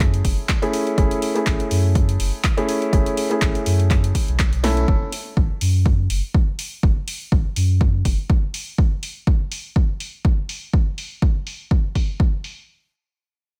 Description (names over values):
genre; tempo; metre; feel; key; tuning
deep house; 123 BPM; 4/4; swing 55% on 16ths; F# minor; A4 = 440 Hz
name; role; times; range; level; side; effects
felt-muted upright piano; stabs; 0.0-4.9 s; A3 to A4; -25 LUFS; equal; digital delay
warm sub bass; bass; 0.0-8.2 s; F#1 to F#2; -22 LUFS; equal; sidechain pumping
electronic kick drum; drums; 0.0-12.3 s; none; -21 LUFS; equal; overdrive, studio reverb
punchy analog drum machine; drums; 0.0-12.5 s; handclaps, hi-hat, snare drum; -31 LUFS; equal; overdrive, low-pass filter on hats, studio reverb, low-pass filter on snare
room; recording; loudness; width
digital ambience; none; -20 LUFS; mono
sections
0.0-4.9 A section; 4.9-12.7 B section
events
drum fill 4.6; band accent 4.6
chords
0.0 F#m9; 4.9 N.C.